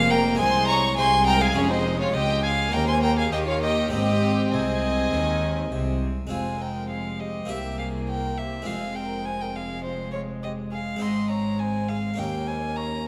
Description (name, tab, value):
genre	classical, baroque-style concerto movement with solo episodes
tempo	102 BPM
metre	4/4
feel	straight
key	Ab major, F minor from 6.3 s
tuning	A4 = 440 Hz
part	warm violin	melody	0.0-13.1 s	Ab4 to C6	-29 LUFS	equal	none
part	dark chamber violin section	second line	0.0-13.1 s	Db4 to Eb5	-35 LUFS	equal	none
part	dark chamber viola section	accompaniment	0.0-13.1 s	Ab3 to C4	-33 LUFS	equal	none
part	harpsichord	accompaniment	0.0-13.1 s	C2 to Ab4	-34 LUFS	equal	none
part	rich chamber double bass section	bass	0.0-13.1 s	F1 to Eb2	-32 LUFS	equal	none
part	warm chamber cello section	bass	0.0-13.1 s	C2 to Eb3	-35 LUFS	equal	none
part	rich chamber violin section	melody	0.1-13.1 s	C4 to Db6	-34 LUFS	equal	none
room	wet recital hall reverb, RT60 1.6 s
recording	none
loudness	-25 LUFS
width	mono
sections	0.0-6.3 A section; 6.3-13.1 B section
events	none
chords	0.4 Ab/C; 1.6 Db/F; 2.7 Eb5; 3.9 Ab; 6.3 Fm; 7.5 C5; 8.7 Fm; 11.0 Ab; 12.2 Eb5